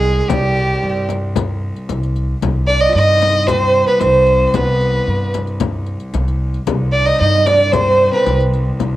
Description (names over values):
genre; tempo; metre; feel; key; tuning
Arabic maqam ensemble; 113 BPM; 4/4; straight; C maqam nahawand; A4 = 436 Hz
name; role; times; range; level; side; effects
clear violin; melody; 0.0-8.4 s; G4 to Eb5; -15 LUFS; equal; cassette tape
oud; second line; 0.0-8.3 s; G3 to F4; -18 LUFS; right 5 dB; cassette tape
upright bass; bass; 0.0-9.0 s; C2 to G2; -18 LUFS; equal; none
bright cello; drone; 0.0-9.0 s; C2; -25 LUFS; equal; cassette tape
riq; percussion; 0.0-8.9 s; none; -29 LUFS; left 7 dB; none
frame drum; percussion; 0.3-8.9 s; none; -22 LUFS; left 6 dB; none
room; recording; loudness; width
wet spring reverb, RT60 1.8 s, small room ambience; home recording on cassette; -13 LUFS; side -15 dB against mid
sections
0.0-9.0 A section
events
none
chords
none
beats
| 0.29 0.82 1.35 1.89 | 2.42 2.95 3.48 4.01 | 4.55 5.08 5.61 6.14 | 6.67 7.21 7.74 8.27 | 8.80